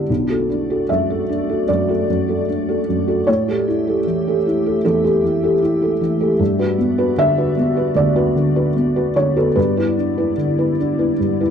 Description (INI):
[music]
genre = neoclassical piano and strings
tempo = 76 BPM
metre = 4/4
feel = rubato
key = B minor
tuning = A4 = 441 Hz
[part]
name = felt-muted upright piano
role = accompaniment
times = 0.0-11.5 s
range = B1 to E5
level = -16 LUFS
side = right 1 dB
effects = none
[part]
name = glassy FM pad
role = sustained chords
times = 0.0-11.5 s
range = A3 to E5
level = -23 LUFS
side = left 4 dB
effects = ensemble chorus, built-in reverb
[sound]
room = small room ambience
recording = dry, close 1970s-style studio recording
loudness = -15 LUFS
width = side -8 dB against mid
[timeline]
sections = 0.1-11.5 A section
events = none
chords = 0.1 Bm7; 3.3 A7; 6.4 Gmaj7 (rootless); 9.6 Em7/G